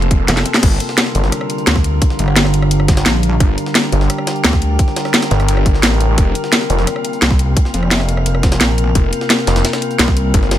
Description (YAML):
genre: dark technical drum and bass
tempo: 173 BPM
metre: 4/4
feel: straight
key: G minor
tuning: A4 = 439 Hz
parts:
  - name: metallic inharmonic drone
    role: sustained chords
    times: 0.0-10.6 s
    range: C3 to Bb4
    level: -20 LUFS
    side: left 1 dB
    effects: chorus, built-in reverb, sidechain pumping
  - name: snarling distorted saw bass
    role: bass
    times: 0.0-1.3, 3.4-6.9, 9.0-10.6 s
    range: F1 to A1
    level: -15 LUFS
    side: equal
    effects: distortion, tube saturation, sidechain pumping
  - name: drum and bass drum kit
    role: drums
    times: 0.0-10.6 s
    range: crash cymbal, hi-hat, rim click, snare drum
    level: -16 LUFS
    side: equal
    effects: overdrive, small room ambience
  - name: electronic kick drum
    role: drums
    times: 0.1-10.4 s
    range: none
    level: -14 LUFS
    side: equal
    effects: overdrive, small room ambience
  - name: pulsing pluck wobble bass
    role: bass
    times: 0.3-4.8, 7.2-10.3 s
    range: F1 to D2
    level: -15 LUFS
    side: equal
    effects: chorus, tube saturation
  - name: jungle sampler-style drum kit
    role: drums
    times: 0.3-10.6 s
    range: hi-hat, snare drum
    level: -25 LUFS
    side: equal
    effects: none
room: little or no reverb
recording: none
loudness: -12 LUFS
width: side -12 dB against mid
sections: 0.6-10.6 A section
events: drum fill 0.3-0.6; drop 0.6-10.6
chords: 0.0 Fsus4; 0.6 Gm7; 6.2 Fsus4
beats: 0.28 | 0.63 0.98 1.32 1.67 | 2.02 2.36 2.71 3.06 | 3.40 3.75 4.10 4.44 | 4.79 5.14 5.49 5.83 | 6.18 6.53 6.87 7.22 | 7.57 7.91 8.26 8.61 | 8.95 9.30 9.65 9.99 | 10.34